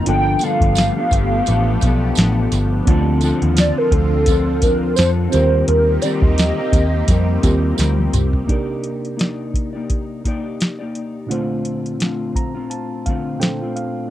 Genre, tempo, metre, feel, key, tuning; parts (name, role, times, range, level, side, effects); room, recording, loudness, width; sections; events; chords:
indie pop, bedroom pop; 85 BPM; 4/4; swing 55% on 16ths; A4 = 440 Hz
warbly nostalgic lead; melody; 0.0-7.6 s; A4 to G5; -20 LUFS; right 1 dB; analog chorus, tape echo
mellow electric guitar; accompaniment; 0.0-14.1 s; G2 to D5; -23 LUFS; left 4 dB; ensemble chorus, warbly pitch drift
reed electric piano; accompaniment; 0.0-14.1 s; Bb2 to Bb5; -27 LUFS; right 5 dB
lush unison pad; sustained chords; 0.0-8.5 s; D3 to G4; -27 LUFS; right 1 dB; chorus, phaser
vintage muted picked electric bass; bass; 0.1-8.4 s; G1 to F2; -18 LUFS; equal
soft vintage rhythm box; drums; 0.1-13.9 s; hi-hat, kick drum, snare drum, toms; -18 LUFS; equal; overdrive
tambourine; percussion; 0.4-8.3 s; -30 LUFS; right 17 dB
light reverb; dry, close 1970s-style studio recording; -15 LUFS; side -13 dB against mid
0.0-8.5 A section; 8.5-14.1 B section
drum fill 7.8-8.5; reed electric piano fill 12.0-14.1
0.1 G9; 2.9 Dm7; 5.3 Eb6; 8.5 Cm9; 11.3 Bbmaj9